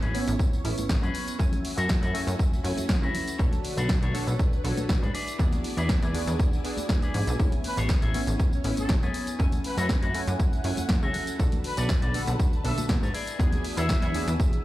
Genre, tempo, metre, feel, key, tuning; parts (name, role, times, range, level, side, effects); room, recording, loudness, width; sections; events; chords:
filtered disco house; 120 BPM; 4/4; straight; A major; A4 = 440 Hz
funky polysynth comp; accompaniment; 0.0-14.6 s; A3 to G#5; -34 LUFS; right 1 dB; chorus, phaser, sidechain pumping, low-pass filter
phased string machine; sustained chords; 0.0-14.6 s; D3 to A5; -39 LUFS; equal; ensemble chorus, phaser, sidechain pumping, low-pass filter
electric guitar with an envelope filter; riff; 0.0-14.4 s; C#4 to E5; -34 LUFS; left 3 dB; sidechain pumping, low-pass filter
plucky analog bass; bass; 0.0-14.6 s; A1 to C#3; -29 LUFS; equal; sidechain pumping, low-pass filter
punchy analog drum machine; drums; 0.0-14.6 s; hi-hat, snare drum, tambourine; -34 LUFS; equal
tambourine and congas; percussion; 0.0-14.6 s; -39 LUFS; left 2 dB; sidechain pumping on perc, low-pass filter on perc
electronic kick drum; drums; 0.4-14.5 s; -24 LUFS; equal
clear trumpet section; melody; 7.6-14.3 s; A4 to E5; -37 LUFS; equal; sidechain pumping, low-pass filter, tape echo
light reverb; played on a big sound system in a bare room, large studio reverb; -23 LUFS; side -16 dB against mid
0.0-14.6 A section
0.0 Amaj7; 1.4 F#m7; 3.4 Bm7; 5.1 E7; 7.4 Amaj7; 9.4 F#m7; 11.4 Bm7; 13.1 E7